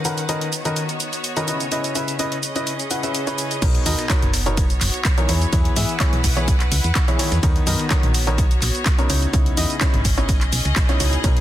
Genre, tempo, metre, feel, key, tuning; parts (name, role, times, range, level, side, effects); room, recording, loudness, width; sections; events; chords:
piano house; 126 BPM; 4/4; straight; B major; A4 = 439 Hz
house drum kit; drums; 0.0-11.4 s; cabasa, crash cymbal, handclaps, hi-hat; -25 LUFS; equal
clear studio string section; texture; 0.0-11.4 s; D#3 to F#5; -29 LUFS; equal; sidechain pumping
clear upright piano; riff; 0.1-11.4 s; B2 to F#5; -24 LUFS; left 1 dB; sidechain pumping, tape echo
solid FM bass; bass; 3.6-11.4 s; F#1 to G#2; -22 LUFS; equal; tube saturation, sidechain pumping
dusty soul sampler-style drum kit; drums; 3.6-11.4 s; hi-hat, ride cymbal, snare drum; -35 LUFS; right 2 dB
electronic kick drum; drums; 3.6-11.3 s; -20 LUFS; equal
light reverb, digital ambience; dense, heavily limited modern master; -17 LUFS; side -13 dB against mid
0.0-3.6 A section; 3.6-11.4 B section
drop 3.6-11.4
0.0 Bmaj9/D#; 1.5 C#m9; 3.6 Bmaj9; 5.3 E6; 7.4 Bmaj9; 9.1 C#m9